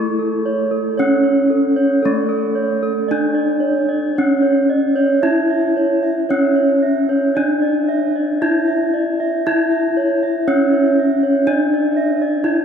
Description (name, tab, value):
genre	gamelan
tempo	57-63 BPM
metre	4/4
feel	straight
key	unclear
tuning	A4 = 440 Hz
part	gamelan-type bronze metallophone	melody	0.0-12.6 s	A3 to E4	-16 LUFS	left 1 dB	none
part	gamelan-type bronze metallophone	arpeggios	0.0-12.6 s	A4 to E5	-19 LUFS	right 3 dB	none
room	wet cathedral reverb, RT60 6.9 s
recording	recorded in a church or concert hall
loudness	-14 LUFS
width	side -7 dB against mid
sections	0.0-12.6 A section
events	none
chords	none